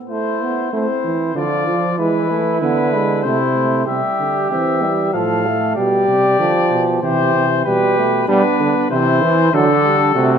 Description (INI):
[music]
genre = classical, imitative canzona for brass ensemble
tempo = 96 BPM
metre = 3/4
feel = straight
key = A minor, C major from 3.9 s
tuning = A4 = 440 Hz
[part]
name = mellow trumpet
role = melody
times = 0.1-10.4 s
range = A4 to F5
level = -20 LUFS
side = left 8 dB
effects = none
[part]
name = mellow flugelhorn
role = second line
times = 0.1-10.4 s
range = D4 to A4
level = -21 LUFS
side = right 5 dB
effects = none
[part]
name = warm euphonium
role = accompaniment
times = 0.1-10.4 s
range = E3 to C4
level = -20 LUFS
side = right 1 dB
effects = none
[part]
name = mellow bass trombone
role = bass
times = 0.7-10.4 s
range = A2 to A3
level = -19 LUFS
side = right 2 dB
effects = none
[sound]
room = wet recital hall reverb, RT60 1.7 s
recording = none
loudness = -14 LUFS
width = side -7 dB against mid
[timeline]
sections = 0.1-3.9 A section; 3.9-10.4 B section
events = none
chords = 0.1 Am; 1.4 Dm; 2.0 E; 3.2 Am/C; 3.9 C; 5.1 F/A; 5.8 G/B; 7.0 C; 7.7 G/B; 8.9 C; 9.5 D